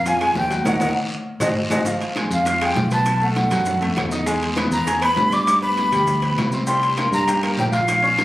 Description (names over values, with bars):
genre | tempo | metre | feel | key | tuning
latin, salsa | 199 BPM | 4/4 | straight | unclear | A4 = 441 Hz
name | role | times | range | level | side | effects
mellow jazz flute | melody | 0.0-8.2 s | Eb5 to D6 | -20 LUFS | equal | plate reverb
fingered electric bass | bass | 0.0-8.2 s | Ab1 to G2 | -24 LUFS | equal | none
bright upright piano | accompaniment | 0.1-8.2 s | F3 to G#6 | -25 LUFS | equal | none
bongos | percussion | 0.1-8.2 s | none | -30 LUFS | left 2 dB | none
congas | percussion | 0.1-8.2 s | none | -30 LUFS | left 1 dB | none
guiro | percussion | 0.1-8.2 s | none | -32 LUFS | left 1 dB | none
maracas | percussion | 0.1-8.2 s | none | -37 LUFS | right 1 dB | none
timbales | percussion | 0.1-8.2 s | none | -31 LUFS | right 3 dB | none
claves | percussion | 0.2-8.0 s | none | -33 LUFS | left 1 dB | none
room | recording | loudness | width
moderate large studio reverb, RT60 0.8 s | recorded on a phone in the room, club reverb, compression | -17 LUFS | side -16 dB against mid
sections
0.0-1.9 A section; 1.9-8.2 B section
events
band accent 0.7-1.9; drum fill 1.4-1.9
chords
0.0 N.C.; 0.7 Ebm7; 1.3 Ab7; 1.9 G7b9; 3.1 B7; 4.3 E; 5.5 G; 6.7 C5